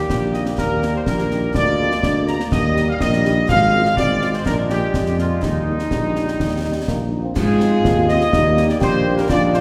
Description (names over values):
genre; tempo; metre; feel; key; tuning
military-style march for wind band; 124 BPM; 2/4; straight; Eb major; A4 = 440 Hz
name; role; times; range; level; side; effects
clear trumpet section; melody; 0.0-9.6 s; Eb4 to Bb5; -23 LUFS; equal; none
warm trombone section; sustained chords; 0.0-9.6 s; G3 to Eb4; -28 LUFS; equal; none
mellow tuba; bass; 0.1-9.6 s; Ab1 to Ab2; -22 LUFS; equal; none
concert snare drum, concert bass drum and clash cymbals; drums; 0.1-9.6 s; none; -26 LUFS; equal; none
mellow French horn section; accompaniment; 0.3-9.6 s; G3 to Ab4; -35 LUFS; equal; none
clear euphonium; second line; 5.9-9.6 s; G3 to G4; -24 LUFS; equal; none
room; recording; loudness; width
wet scoring stage reverb, RT60 1.9 s; heard from further back in the room; -18 LUFS; mono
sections
0.0-7.4 A section; 7.4-9.6 B section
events
none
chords
0.0 Eb; 1.5 Bb7/D; 2.5 Eb; 3.5 Fm/Ab; 4.5 Bb7; 5.4 Eb; 7.4 Ab; 8.3 Eb